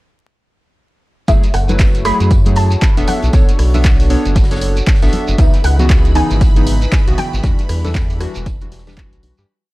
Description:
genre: deep house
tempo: 117 BPM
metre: 4/4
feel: swing 60% on 16ths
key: F# minor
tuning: A4 = 441 Hz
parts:
  - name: soft round pluck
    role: melody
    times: 1.3-9.2 s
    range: E5 to B5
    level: -22 LUFS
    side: equal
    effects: ensemble chorus, tape echo
  - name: warm analog pad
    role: sustained chords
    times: 1.3-9.5 s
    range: G3 to C#5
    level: -27 LUFS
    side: equal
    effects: chorus, sidechain pumping
  - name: warm analog keys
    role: stabs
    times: 1.3-9.5 s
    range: C#3 to E5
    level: -21 LUFS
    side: equal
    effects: chorus, sidechain pumping, tape echo
  - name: round analog bass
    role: bass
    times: 1.3-9.4 s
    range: E1 to G2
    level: -15 LUFS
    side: equal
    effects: tube saturation, sidechain pumping
  - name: electronic kick drum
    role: drums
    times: 1.3-9.1 s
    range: none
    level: -12 LUFS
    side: equal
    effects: none
  - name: loose indie drum kit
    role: drums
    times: 1.3-9.4 s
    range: hi-hat, snare drum, tambourine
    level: -37 LUFS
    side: equal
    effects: none
  - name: punchy analog drum machine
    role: drums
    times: 1.3-9.4 s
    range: handclaps, hi-hat, rim click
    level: -25 LUFS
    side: equal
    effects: none
  - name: shekere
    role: percussion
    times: 1.3-9.5 s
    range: none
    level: -32 LUFS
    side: right 3 dB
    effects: none
  - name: congas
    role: percussion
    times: 1.7-9.4 s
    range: none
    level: -27 LUFS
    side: left 2 dB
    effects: sidechain pumping on perc
  - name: string machine, violins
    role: texture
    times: 5.4-9.5 s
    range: B5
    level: -34 LUFS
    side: equal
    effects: ensemble chorus
room: small room ambience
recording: vinyl crackle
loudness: -11 LUFS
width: side -20 dB against mid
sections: 1.3-9.5 drop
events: drop 1.3-9.5; fade-out 6.8-9.5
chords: 1.3 F#m9; 3.1 Bm9; 5.4 C#m9; 7.4 Em9

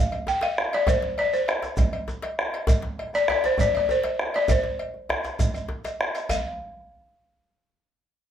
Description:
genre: west african traditional, West African drum ensemble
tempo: 133 BPM (dotted quarters)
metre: 12/8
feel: straight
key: unclear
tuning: A4 = 439 Hz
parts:
  - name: balafon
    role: melody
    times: 0.0-6.4 s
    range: C5 to G5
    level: -24 LUFS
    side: left 2 dB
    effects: none
  - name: cowbell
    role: percussion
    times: 0.1-6.4 s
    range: none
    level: -33 LUFS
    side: equal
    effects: none
  - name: djembe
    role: percussion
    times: 0.3-6.4 s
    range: none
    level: -29 LUFS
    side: left 1 dB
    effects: none
  - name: shekere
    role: percussion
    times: 0.3-6.4 s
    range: none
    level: -35 LUFS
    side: right 3 dB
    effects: none
  - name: bombo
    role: percussion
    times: 0.6-6.4 s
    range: none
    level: -27 LUFS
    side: right 2 dB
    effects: none
room: wet small room reverb, RT60 0.5 s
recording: heard from further back in the room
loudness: -22 LUFS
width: side -9 dB against mid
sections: 0.0-6.3 A section; 6.3-8.1 B section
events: none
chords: none

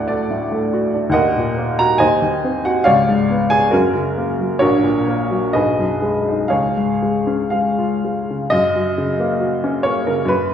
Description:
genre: classical, romantic character piece for solo piano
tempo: 58-71 BPM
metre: 2/4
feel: rubato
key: F# major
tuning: A4 = 440 Hz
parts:
  - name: warm upright piano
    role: solo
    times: 0.0-10.5 s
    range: A#1 to A#5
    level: -15 LUFS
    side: equal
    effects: none
room: wet recital hall reverb, RT60 1.5 s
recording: recorded in a church or concert hall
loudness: -15 LUFS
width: side -8 dB against mid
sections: 0.0-8.5 A section; 8.5-10.5 B section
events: none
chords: 0.0 D; 1.2 D#m; 2.0 G#7/D#; 2.9 C#7b9; 3.7 F#; 4.6 F#/A#; 5.6 G#m7/B; 6.5 C#; 8.5 F#

